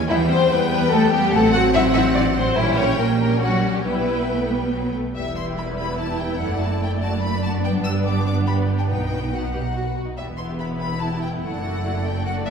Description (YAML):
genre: quick classical-period movement for string orchestra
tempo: 144 BPM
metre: 3/4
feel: straight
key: E minor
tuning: A4 = 440 Hz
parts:
  - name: rich studio violin section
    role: melody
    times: 0.0-12.5 s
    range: E5 to E6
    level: -29 LUFS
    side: left 5 dB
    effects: none
  - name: clear symphonic viola section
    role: accompaniment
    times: 0.0-12.5 s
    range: F#3 to G4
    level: -26 LUFS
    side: equal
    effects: none
  - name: warm studio double bass section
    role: bass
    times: 0.0-12.5 s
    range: E1 to E2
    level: -25 LUFS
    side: right 1 dB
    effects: none
  - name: warm symphonic violin section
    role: second line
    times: 0.1-12.5 s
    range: G3 to F#5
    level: -24 LUFS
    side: left 2 dB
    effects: none
  - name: rich symphonic cello section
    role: bass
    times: 0.1-12.5 s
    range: E2 to F#4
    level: -25 LUFS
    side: right 2 dB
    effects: none
room: wet recital hall reverb, RT60 1.5 s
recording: heard from further back in the room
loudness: -18 LUFS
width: side -6 dB against mid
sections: 0.0-5.1 A section; 5.1-12.5 B section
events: none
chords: 0.1 Em; 1.3 F#dim/A; 2.6 A#dim7; 3.9 Em/B; 4.7 B5; 5.1 Em; 6.4 D/F#; 7.6 G; 8.9 B; 10.2 Em; 11.4 D/F#